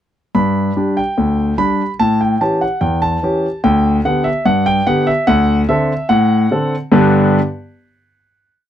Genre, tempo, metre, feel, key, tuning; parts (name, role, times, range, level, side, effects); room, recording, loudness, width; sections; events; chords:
ragtime piano; 73 BPM; 2/4; straight; G major; A4 = 440 Hz
warm concert grand piano; solo; 0.3-7.4 s; D2 to B5; -12 LUFS; equal
moderate booth ambience, RT60 0.2 s; dry, close 1970s-style studio recording; -13 LUFS; side -10 dB against mid
0.3-6.9 A section; 6.9-8.6 final chord
0.3 G5; 2.0 A7; 3.6 G/D; 5.3 D7; 6.9 G